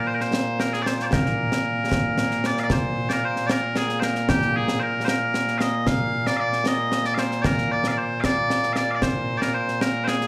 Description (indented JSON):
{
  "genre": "scottish traditional, Scottish pipe music",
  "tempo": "76 BPM (dotted quarters)",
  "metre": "6/8",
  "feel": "straight",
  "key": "Bb mixolydian",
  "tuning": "A4 = 441 Hz",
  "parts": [
    { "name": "loud bright bagpipes", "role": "melody", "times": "0.0-10.3 s", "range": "Bb2 to F5", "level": "-25 LUFS", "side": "equal", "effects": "plate reverb, slapback echo" },
    { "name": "concert snare drum and concert bass drum", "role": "drums", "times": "0.2-10.3 s", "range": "none", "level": "-28 LUFS", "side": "equal", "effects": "slapback echo" }
  ],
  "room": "moderate club reverb, RT60 0.6 s",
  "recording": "live gig heard through the venue's PA, club reverb",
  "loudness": "-23 LUFS",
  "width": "mono",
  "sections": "0.0-2.7 A section; 2.7-10.3 A section",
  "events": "none",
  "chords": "none"
}